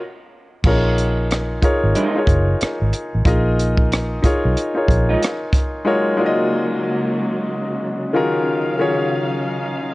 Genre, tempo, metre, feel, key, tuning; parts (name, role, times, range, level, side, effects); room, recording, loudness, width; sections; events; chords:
R&B, neo-soul; 92 BPM; 4/4; swing 62% on 16ths; A4 = 442 Hz
warm concert grand piano; accompaniment; 0.6-9.9 s; Eb3 to Eb5; -20 LUFS; left 1 dB
vintage muted fingered electric bass; bass; 0.6-5.1 s; Gb1 to Cb2; -19 LUFS; equal
compact cocktail drum kit; drums; 0.6-5.7 s; crash cymbal, hi-hat, kick drum, rim click; -19 LUFS; equal
electric guitar through a small old amp; second line; 2.0-5.2 s; Ab3 to F4; -23 LUFS; right 2 dB; ensemble chorus
dark studio string section; sustained chords; 5.8-9.9 s; Db3 to F5; -23 LUFS; equal
studio reverb; worn, warbling old tape, cassette tape, warbly pitch drift, nothing above 10.6 kHz; -16 LUFS; side -20 dB against mid
0.6-5.9 A section; 5.9-9.9 B section
band accent 0.0-0.6
0.0 N.C.; 0.6 Bb7sus4; 5.9 Ab9sus4; 8.1 Ebm9